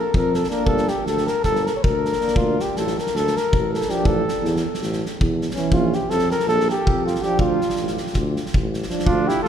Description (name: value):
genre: balkan folk, Balkan brass band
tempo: 322 BPM (eighths)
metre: 9/8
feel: straight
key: D harmonic minor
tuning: A4 = 439 Hz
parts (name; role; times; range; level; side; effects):
- mellow flugelhorn; melody; 0.0-9.5 s; F4 to C#5; -22 LUFS; equal; none
- warm tuba; bass; 0.1-9.5 s; G1 to F2; -24 LUFS; equal; none
- loose indie drum kit; percussion; 0.1-9.5 s; kick drum, snare drum; -24 LUFS; equal; none
- bright trombone; accompaniment; 0.5-9.3 s; C#4 to D4; -32 LUFS; left 4 dB; none
- warm euphonium; accompaniment; 0.5-9.3 s; E3 to Bb3; -29 LUFS; right 4 dB; none
- warm trumpet; second line; 9.1-9.5 s; D4 to F4; -25 LUFS; right 3 dB; none
room: wet church reverb, RT60 3.6 s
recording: recorded in a church or concert hall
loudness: -18 LUFS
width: side -9 dB against mid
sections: 0.0-9.1 A section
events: none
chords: 0.0 Bb; 0.7 Gm; 2.4 D5; 4.0 A5; 5.7 Bb5; 7.4 Dm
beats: 0.10 0.29 0.47 | 0.66 0.85 1.04 1.23 1.41 1.60 1.79 1.98 2.16 | 2.35 2.54 2.73 2.91 3.10 3.29 3.47 3.66 3.85 | 4.03 4.22 4.40 4.59 4.78 4.96 5.15 5.33 5.52 | 5.71 5.89 6.08 6.26 6.45 6.63 6.82 7.01 7.19 | 7.38 7.56 7.75 7.94 8.12 8.31 8.49 8.68 8.87 | 9.05 9.24 9.43